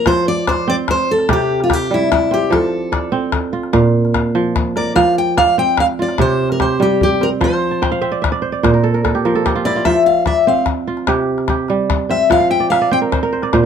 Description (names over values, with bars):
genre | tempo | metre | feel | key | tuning
west african traditional, West African string and xylophone music | 98 BPM (dotted quarters) | 12/8 | straight | F major | A4 = 440 Hz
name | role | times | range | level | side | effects
fingerpicked steel-string acoustic guitar | melody | 0.0-13.0 s | E4 to G5 | -16 LUFS | left 2 dB | plate reverb
kora | arpeggios | 0.0-13.7 s | Bb2 to A5 | -16 LUFS | right 3 dB | none
calabash | percussion | 0.1-13.6 s | none | -21 LUFS | left 5 dB | none
room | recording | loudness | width
light reverb | dark, warm production | -13 LUFS | side -7 dB against mid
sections
0.1-13.7 A section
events
kora fill 7.7-9.9, 12.4-13.7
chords
0.1 F5; 1.3 C5; 2.5 F; 3.7 Bb5; 5.0 F5; 6.2 C5; 7.4 F5; 8.6 Bb5; 9.9 F5; 11.1 C5; 12.3 F5